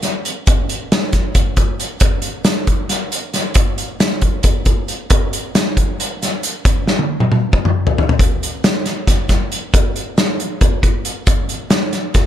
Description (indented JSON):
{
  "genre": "rock",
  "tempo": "272 BPM (eighths)",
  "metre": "7/8",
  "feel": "straight",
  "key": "none",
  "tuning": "none",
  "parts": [
    { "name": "loose indie drum kit", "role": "drums", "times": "0.0-12.3 s", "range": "hi-hat, kick drum, snare drum, toms", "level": "-14 LUFS", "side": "equal", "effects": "none" }
  ],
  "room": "light reverb",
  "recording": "none",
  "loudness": "-14 LUFS",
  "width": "side -11 dB against mid",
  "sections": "0.0-8.2 A section; 8.2-12.3 B section",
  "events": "drum fill 6.9-8.2",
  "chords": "none",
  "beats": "0.04 0.26 | 0.48 0.70 0.92 1.14 1.36 1.58 1.80 | 2.02 2.24 2.46 2.68 2.90 3.12 3.34 | 3.56 3.78 4.00 4.22 4.44 4.66 4.88 | 5.10 5.32 5.54 5.76 5.99 6.21 6.43 | 6.65 6.87 7.09 7.31 7.53 7.75 7.97 | 8.19 8.41 8.63 8.85 9.07 9.29 9.52 | 9.74 9.96 10.18 10.40 10.62 10.84 11.06 | 11.28 11.50 11.72 11.94 12.16"
}